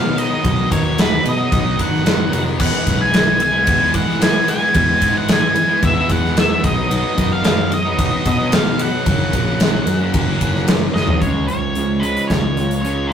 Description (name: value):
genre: quiet-loud alternative rock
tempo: 111 BPM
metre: 4/4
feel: straight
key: unclear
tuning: A4 = 440 Hz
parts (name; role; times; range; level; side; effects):
- octave-fuzz lead guitar; melody; 0.0-13.1 s; B4 to G#5; -20 LUFS; equal; distortion
- fuzz guitar; riff; 0.0-13.1 s; F#2 to E4; -22 LUFS; equal; distortion
- picked electric bass; bass; 0.0-13.1 s; E#1 to E3; -22 LUFS; equal; none
- big rock drum kit; drums; 0.2-13.0 s; crash cymbal, hi-hat, kick drum, ride cymbal, snare drum, toms; -18 LUFS; equal; none
- electric guitar through a small old amp; arpeggios; 11.2-13.1 s; C#3 to E#4; -25 LUFS; right 3 dB; none
room: light reverb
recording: rough rehearsal-room recording, tube saturation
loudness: -14 LUFS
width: side -8 dB against mid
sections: 0.0-11.2 A section; 11.2-13.1 B section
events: drum fill 11.0; half time 11.2-13.1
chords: 0.0 B; 2.6 E; 6.6 B; 9.1 F#; 11.2 C#